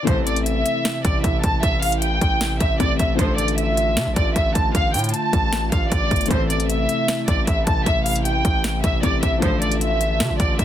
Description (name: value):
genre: hip hop, trap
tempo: 154 BPM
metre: 4/4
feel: half-time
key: A minor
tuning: A4 = 439 Hz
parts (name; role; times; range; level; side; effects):
- warm studio violin section; melody; 0.0-10.6 s; C5 to A5; -23 LUFS; equal; low-pass filter
- dark grand piano; accompaniment; 0.0-10.6 s; E3 to A4; -28 LUFS; left 6 dB; low-pass filter
- hollow soft pad; sustained chords; 0.4-10.6 s; C3 to F4; -29 LUFS; right 1 dB; chorus
- rich symphonic string section; stabs; 0.1-0.2, 3.2-3.4, 6.3-6.5, 9.4-9.6 s; C2 to F3; -28 LUFS; right 5 dB; none
- distorted 808-style bass; bass; 0.1-10.6 s; G1 to C3; -24 LUFS; equal; distortion
- trap drum kit; drums; 0.1-10.6 s; hi-hat, kick drum, snare drum; -22 LUFS; equal; none
room: small room ambience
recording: dense, heavily limited modern master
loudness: -18 LUFS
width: side -11 dB against mid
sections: 0.1-10.6 A section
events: none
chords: 0.1 Am; 3.2 Dm/A; 6.3 Am; 9.4 Dm/A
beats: | 0.07 0.46 0.85 1.24 | 1.63 2.02 2.41 2.80 | 3.19 3.58 3.97 4.36 | 4.75 5.14 5.53 5.92 | 6.31 6.70 7.08 7.47 | 7.86 8.25 8.64 9.03 | 9.42 9.81 10.20 10.59